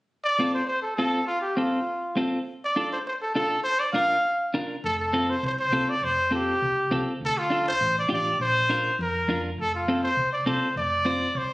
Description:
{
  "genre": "latin, cumbia",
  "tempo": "203 BPM",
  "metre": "4/4",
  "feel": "straight",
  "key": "F major",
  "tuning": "A4 = 440 Hz",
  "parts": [
    { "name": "clear trumpet", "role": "melody", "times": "0.2-11.5 s", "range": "F4 to F5", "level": "-24 LUFS", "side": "equal", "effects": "none" },
    { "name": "clean electric guitar", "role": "accompaniment", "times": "0.4-11.3 s", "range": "C4 to C5", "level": "-27 LUFS", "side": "equal", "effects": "none" },
    { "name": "hollow-body short-scale fingered electric bass", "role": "bass", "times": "4.8-11.5 s", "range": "F1 to F2", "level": "-33 LUFS", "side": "equal", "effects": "none" }
  ],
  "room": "light reverb",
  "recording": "recorded on a phone in the room, studio reverb",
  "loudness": "-23 LUFS",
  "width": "side -20 dB against mid",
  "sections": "0.1-4.8 A section; 4.8-11.5 B section",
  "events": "none",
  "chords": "0.1 F; 2.5 Dm; 3.7 Bb; 4.8 F; 7.2 Dm; 8.4 Bb; 9.6 F"
}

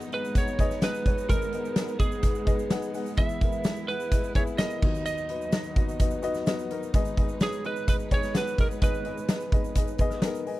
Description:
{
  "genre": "piano-driven pop",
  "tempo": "128 BPM",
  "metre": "4/4",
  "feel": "straight",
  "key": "unclear",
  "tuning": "A4 = 441 Hz",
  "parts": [
    { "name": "dark upright piano", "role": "accompaniment", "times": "0.0-10.6 s", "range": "G#1 to G#5", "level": "-32 LUFS", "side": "left 4 dB", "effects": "none" },
    { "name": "rich studio string section", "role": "sustained chords", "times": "0.0-10.6 s", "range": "D#2 to B4", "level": "-38 LUFS", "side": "right 3 dB", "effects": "none" },
    { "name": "egg shaker", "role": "percussion", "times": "0.0-10.5 s", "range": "none", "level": "-50 LUFS", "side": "right 18 dB", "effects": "none" },
    { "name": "lightly driven lead guitar", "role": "melody", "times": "0.1-10.2 s", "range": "G#4 to E5", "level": "-32 LUFS", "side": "right 3 dB", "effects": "none" },
    { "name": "huge arena drum kit", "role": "drums", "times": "0.1-10.6 s", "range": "crash cymbal, hi-hat, kick drum, snare drum", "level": "-26 LUFS", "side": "equal", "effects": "none" }
  ],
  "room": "little or no reverb",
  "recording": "dry, close 1970s-style studio recording",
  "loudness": "-24 LUFS",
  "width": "side -17 dB against mid",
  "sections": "0.0-10.6 A section",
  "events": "upright piano fill 10.0-10.6",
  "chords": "0.0 G#m; 3.2 E; 4.8 B/D#; 6.9 G#m"
}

